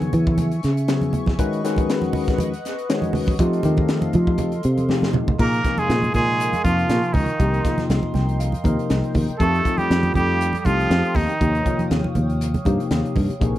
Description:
electric jazz fusion; 120 BPM; 4/4; swing 55% on 16ths; Bb dorian from 5.4 s; A4 = 440 Hz
bright tine electric piano; accompaniment; 0.0-13.6 s; C3 to G5; -24 LUFS; left 4 dB; wide subtle chorus
chorused pulse-width pad; sustained chords; 0.0-13.6 s; A4 to Eb6; -32 LUFS; right 1 dB
fingered electric bass; bass; 0.0-13.6 s; Bb1 to F3; -21 LUFS; equal
crisp fusion drum kit; drums; 0.0-13.6 s; crash cymbal, hi-hat, kick drum, snare drum, toms; -24 LUFS; equal
congas; percussion; 0.0-13.3 s; -27 LUFS; right 2 dB
trumpet with straight mute; melody; 5.4-11.9 s; Eb4 to Bb4; -23 LUFS; equal; slapback echo
trombone with metal mute; second line; 5.4-11.9 s; Eb3 to Bb3; -28 LUFS; right 6 dB
little or no reverb; -18 LUFS; side -14 dB against mid
0.0-5.4 A section; 5.4-13.6 B section
fingered electric bass solo 0.0-5.4; drum fill 4.8-5.4; tine electric piano fill 7.9-9.4
0.0 Bsus24; 1.4 C#9sus4; 3.4 F7; 5.4 Bbm7; 7.4 Cm7; 9.4 F9; 11.4 Eb9

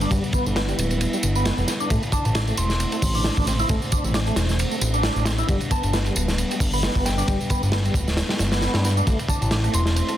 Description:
breakbeat, breaks; 134 BPM; 4/4; swing 55% on 16ths; A minor; A4 = 440 Hz
dark analog pad; sustained chords; 0.0-10.2 s; G3 to C5; -30 LUFS; equal; chorus, sidechain pumping
percussive tonewheel organ; riff; 0.0-10.1 s; G3 to E4; -28 LUFS; equal; overdrive, chorus vibrato, slow rotary speaker, tape echo
fat analog bass; bass; 0.0-10.0 s; D1 to G2; -23 LUFS; equal
tambourine; drums; 0.0-10.2 s; -33 LUFS; right 3 dB
crunchy breakbeat drum kit; drums; 0.1-10.2 s; hi-hat, kick drum, ride cymbal, snare drum; -24 LUFS; equal
soft synth bell; melody; 2.1-10.2 s; G5 to C6; -33 LUFS; left 1 dB; chorus, old record sound, tape echo
light reverb, small room reverb; dense, heavily limited modern master; -20 LUFS; side -12 dB against mid
0.0-10.2 A section
0.0 G; 1.9 Am; 5.5 G; 9.1 Am

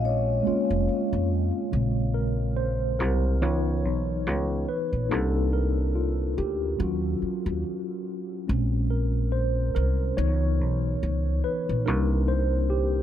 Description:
R&B, neo-soul; 71 BPM; 4/4; swing 56% on 16ths; Bb minor; A4 = 440 Hz
vibraphone with medium mallets; melody; 0.0-1.3 s; Db5; -32 LUFS; left 3 dB; ping-pong delay
mellow tine electric piano; accompaniment; 0.0-13.0 s; Db3 to Db5; -28 LUFS; equal; medium stereo tremolo
upright bass; bass; 0.0-13.0 s; F1 to F2; -25 LUFS; equal
light reverb, small room ambience; -23 LUFS; side -10 dB against mid
0.0-1.7 A section; 1.7-13.0 B section
tine electric piano solo 1.7-13.0
0.0 Bbm9; 3.4 Dbm9; 5.1 Cm9; 6.8 Ebm9; 8.5 Bbm9; 10.2 Dbm9; 11.9 Cm9

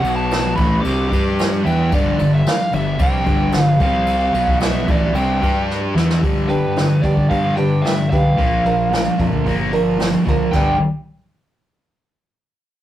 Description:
quiet-loud alternative rock; 111 BPM; 4/4; straight; G mixolydian; A4 = 440 Hz
biting lead guitar; melody; 0.0-10.8 s; B4 to D6; -21 LUFS; right 1 dB; overdrive
tonewheel organ; sustained chords; 0.0-6.2 s; G3 to G5; -32 LUFS; equal
thick fuzz guitar; riff; 0.0-10.7 s; G2 to G4; -21 LUFS; left 3 dB; distortion
thick fuzz guitar; riff; 0.0-10.7 s; G2 to G4; -23 LUFS; right 4 dB; distortion
fuzz fingered electric bass; bass; 0.0-10.8 s; G1 to G2; -23 LUFS; equal; overdrive
jazz brush drum kit; drums; 0.0-10.7 s; crash cymbal, hi-hat, kick drum, snare drum; -21 LUFS; equal
picked acoustic archtop guitar; arpeggios; 6.5-10.8 s; G2 to Bb4; -22 LUFS; right 2 dB
light reverb; rough rehearsal-room recording; -15 LUFS; side -12 dB against mid
0.0-6.2 A section; 6.2-10.5 B section; 10.5-12.7 C section
drum fill 5.7-6.2
0.0 B5; 0.6 G; 3.8 C5; 4.3 B5; 4.9 G; 8.4 Bb; 10.5 G5

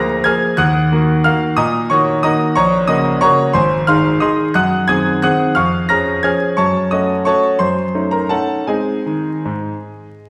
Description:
classical, piano waltz; 154-190 BPM; 3/4; rubato; A4 = 441 Hz
bright concert grand piano; solo; 0.0-10.3 s; Ab1 to Bb6; -15 LUFS; equal
wet recital hall reverb, RT60 1.4 s; recorded in a church or concert hall, vinyl crackle; -15 LUFS; mono
0.0-10.3 A section
0.0 Bb7/D; 0.6 Ebm; 2.6 Gb/Bb; 3.5 Ab; 4.5 Ab7/Gb; 5.6 Db/F; 6.6 Gbm; 7.6 Ebm7b5/Gb; 8.7 Ab

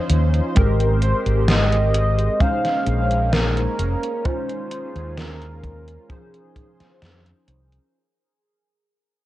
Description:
vaporwave; 65 BPM; 4/4; straight; A4 = 439 Hz
warm velvety synth lead; melody; 0.0-7.5 s; Ab4 to F5; -26 LUFS; equal; chorus, tape echo
warbly lo-fi synth keys; accompaniment; 0.0-8.0 s; F3 to C5; -26 LUFS; equal; ensemble chorus, analog delay
lush unison pad; sustained chords; 0.0-7.9 s; Eb3 to C5; -30 LUFS; equal; chorus, phaser
mellow fretless electric bass; bass; 0.1-7.8 s; F1 to F2; -20 LUFS; equal
gated 80s digital drum machine; drums; 0.1-7.9 s; hi-hat, snare drum; -24 LUFS; equal; gated reverb, gated reverb snare, overdrive, vintage 12-bit sampler grit
kick drum; drums; 0.6-6.8 s; -20 LUFS; equal; vintage 12-bit sampler grit
digital ambience; worn, warbling old tape, cassette tape, warbly pitch drift; -17 LUFS; side -15 dB against mid
0.0-7.9 A section
fade-out 0.0-7.9
0.0 Dbmaj9; 0.6 Abmaj9; 2.4 Bbm11; 4.2 Eb9sus4; 6.1 Dbmaj9/F

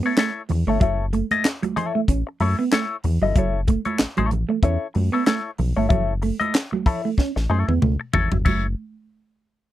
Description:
funk; 94 BPM; 4/4; swing 56% on 16ths; F# dorian; A4 = 442 Hz
clean electric guitar; riff; 0.0-8.7 s; F#3 to C#4; -25 LUFS; right 6 dB
semi-hollow electric guitar; accompaniment; 0.1-8.7 s; E4 to D#5; -24 LUFS; left 6 dB; wah
tight funk drum kit; drums; 0.2-8.6 s; crash cymbal, handclaps, hi-hat, kick drum, snare drum, toms; -20 LUFS; left 1 dB
round analog bass; bass; 0.5-8.7 s; F#1 to F#2; -22 LUFS; left 1 dB
congas; percussion; 0.5-8.8 s; -30 LUFS; right 5 dB
little or no reverb; dry, close 1970s-style studio recording; -19 LUFS; side -14 dB against mid
0.0-8.4 A section; 8.4-9.7 B section
drum fill 7.2-8.4
0.0 F#m7

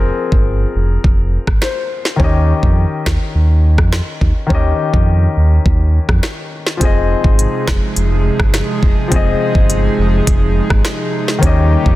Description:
dancehall; 104 BPM; 4/4; straight; F minor; A4 = 440 Hz
warm grand piano; accompaniment; 0.0-12.0 s; Eb3 to Eb5; -20 LUFS; left 5 dB
sub bass with octave; bass; 0.0-12.0 s; F1 to F2; -14 LUFS; equal
island pop drum kit; drums; 0.3-12.0 s; hi-hat, kick drum, rim click, snare drum; -14 LUFS; equal
airy breathy pad; sustained chords; 6.8-12.0 s; C3 to Ab4; -19 LUFS; right 2 dB; chorus, sidechain pumping
digital ambience; dense, heavily limited modern master; -12 LUFS; side -16 dB against mid
0.0-6.8 A section; 6.8-12.0 B section
grand piano fill 1.3-2.2
0.0 Fm7; 2.2 Eb7; 6.8 Fm7; 11.4 Eb7

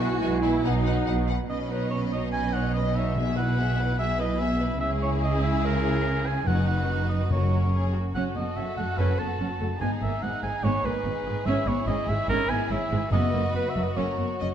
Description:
cinematic; 144 BPM; 4/4; straight; B major; A4 = 437 Hz
warm symphonic violin section; melody; 0.0-14.5 s; G#4 to G#5; -37 LUFS; left 6 dB
clear symphonic violin section; second line; 0.0-14.5 s; D#4 to F#5; -36 LUFS; left 4 dB
dark clarinet; second line; 0.0-1.3 s; F#3 to B3; -39 LUFS; left 3 dB
warm cor anglais; second line; 0.0-14.5 s; D#4 to A5; -30 LUFS; right 1 dB
clear symphonic viola section; accompaniment; 0.0-14.5 s; F#3 to F#4; -32 LUFS; right 1 dB
mellow French horn section; sustained chords; 0.0-1.2 s; B3 to F#4; -31 LUFS; equal
clear trumpet section; stabs; 0.0-1.2 s; F#5 to G#5; -36 LUFS; right 2 dB
rich symphonic cello section; bass; 0.0-14.5 s; F#2 to C#3; -30 LUFS; right 2 dB
rich symphonic double bass section; bass; 0.0-14.5 s; F#1 to C#2; -29 LUFS; right 1 dB
timpani; percussion; 3.2-3.7, 6.5-7.9, 13.1-13.7 s; F#2 to B2; -31 LUFS; left 3 dB
moderate scoring stage reverb, RT60 1.8 s; dark, warm production; -23 LUFS; side -9 dB against mid
0.0-1.5 A section; 1.5-14.5 B section
0.0 E/B; 0.6 B; 1.5 Badd9; 3.2 E/B; 4.8 C#m; 6.5 B/F#; 7.3 F#; 8.2 F#m; 9.8 G#m; 11.5 C#m/G#; 13.1 B/F#; 14.0 F#

